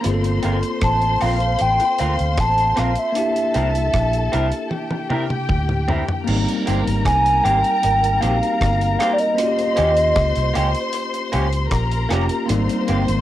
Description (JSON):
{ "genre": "lovers rock reggae", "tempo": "77 BPM", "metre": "4/4", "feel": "straight", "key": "unclear", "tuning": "A4 = 439 Hz", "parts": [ { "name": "dark studio string section", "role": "second line", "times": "0.0-13.2 s", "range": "G4 to C6", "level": "-27 LUFS", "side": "left 4 dB", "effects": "cassette tape, tape echo" }, { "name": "bell-like tine electric piano", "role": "accompaniment", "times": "0.0-13.2 s", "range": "G3 to A4", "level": "-25 LUFS", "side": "left 1 dB", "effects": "fast stereo tremolo, cassette tape, tape echo" }, { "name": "deep reggae drum kit", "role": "drums", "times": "0.0-13.2 s", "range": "crash cymbal, hi-hat, kick drum, rim click, toms", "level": "-26 LUFS", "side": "equal", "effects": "cassette tape, tape echo" }, { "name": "vintage muted fingered electric bass", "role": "bass", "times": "0.1-13.2 s", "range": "F1 to Eb2", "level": "-21 LUFS", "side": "equal", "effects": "none" }, { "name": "electric guitar through a small old amp", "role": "stabs", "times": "0.4-13.0 s", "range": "Bb3 to Bb4", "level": "-24 LUFS", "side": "right 2 dB", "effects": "lush chorus, cassette tape" }, { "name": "hollow clarinet-like synth lead", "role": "melody", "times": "0.8-11.5 s", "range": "D5 to A5", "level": "-19 LUFS", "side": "equal", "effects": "chorus, cassette tape, tape echo" } ], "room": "little or no reverb", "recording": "home recording on cassette", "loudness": "-16 LUFS", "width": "side -13 dB against mid", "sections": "0.0-6.3 A section; 6.3-13.2 B section", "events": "drum fill 4.7-6.3", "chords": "0.0 Gm11; 3.2 C7; 6.3 Abmaj9; 9.4 Eb7; 12.5 Abmaj9", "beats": "| 0.04 0.82 1.60 2.38 | 3.16 3.94 4.72 5.49 | 6.27 7.05 7.83 8.61 | 9.38 10.16 10.94 11.71 | 12.49" }